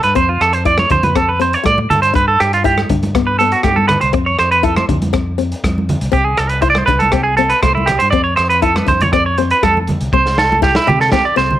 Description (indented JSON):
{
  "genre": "highlife guitar band",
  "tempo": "120 BPM",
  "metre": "4/4",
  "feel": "straight",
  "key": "C major",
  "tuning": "A4 = 442 Hz",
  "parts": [
    { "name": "clean electric guitar", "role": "arpeggios", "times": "0.0-11.6 s", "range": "E4 to D5", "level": "-13 LUFS", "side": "right 3 dB", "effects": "harmonic tremolo, slapback echo" },
    { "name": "fingered electric bass", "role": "bass", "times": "0.0-11.6 s", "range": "C2 to C3", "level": "-20 LUFS", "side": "equal", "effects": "none" },
    { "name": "crunchy breakbeat drum kit", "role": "drums", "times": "0.0-11.4 s", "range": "hi-hat, kick drum, rim click, snare drum", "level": "-20 LUFS", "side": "equal", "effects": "none" },
    { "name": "nylon-string guitar", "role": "accompaniment", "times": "0.2-11.6 s", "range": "A3 to E4", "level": "-20 LUFS", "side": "left 12 dB", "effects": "none" },
    { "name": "congas", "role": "percussion", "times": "0.8-11.6 s", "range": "none", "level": "-20 LUFS", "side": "right 2 dB", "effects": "none" }
  ],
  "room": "light reverb",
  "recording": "none",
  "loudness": "-11 LUFS",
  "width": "side -12 dB against mid",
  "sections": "0.0-10.1 A section; 10.1-11.6 B section",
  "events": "clean electric guitar solo 0.0-10.1",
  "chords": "0.2 F6; 2.2 G; 4.1 F5; 6.1 Cadd9; 8.1 F6; 10.1 C"
}